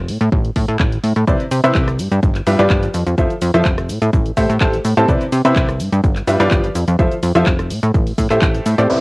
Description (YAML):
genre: piano house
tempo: 126 BPM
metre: 4/4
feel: straight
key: unclear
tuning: A4 = 440 Hz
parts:
  - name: plucky analog bass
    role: bass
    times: 0.0-8.9 s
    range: F1 to C3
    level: -17 LUFS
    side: equal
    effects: sidechain pumping
  - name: house drum kit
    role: drums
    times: 0.1-9.0 s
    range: crash cymbal, handclaps, hi-hat, rim click, shaker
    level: -26 LUFS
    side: equal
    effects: low-pass filter on snare, studio reverb, cassette tape, low-pass filter on hats, low-pass filter on perc, low-pass filter on cymbals
  - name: electronic kick drum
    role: drums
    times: 0.3-8.5 s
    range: none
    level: -17 LUFS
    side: equal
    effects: overdrive, studio reverb, cassette tape
  - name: bright upright piano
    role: riff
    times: 1.3-9.0 s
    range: C3 to A5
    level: -17 LUFS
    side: equal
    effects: sidechain pumping, low-pass filter, cassette tape, analog delay
  - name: downlifter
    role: sound effects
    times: 8.9-9.0 s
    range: none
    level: -23 LUFS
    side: right 1 dB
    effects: none
room: light reverb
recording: home recording on cassette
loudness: -13 LUFS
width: side -25 dB against mid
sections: 0.0-8.9 A section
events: band accent 8.4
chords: 0.0 N.C.; 1.3 Cmaj9; 2.0 G7; 2.9 Fmaj7; 3.9 Am7; 5.1 Cmaj9; 5.8 G7; 6.8 Fmaj7; 7.7 Am7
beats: 0.32 0.80 | 1.28 1.75 2.23 2.70 | 3.18 3.66 4.13 4.61 | 5.08 5.56 6.04 6.51 | 6.99 7.47 7.94 8.42 | 8.89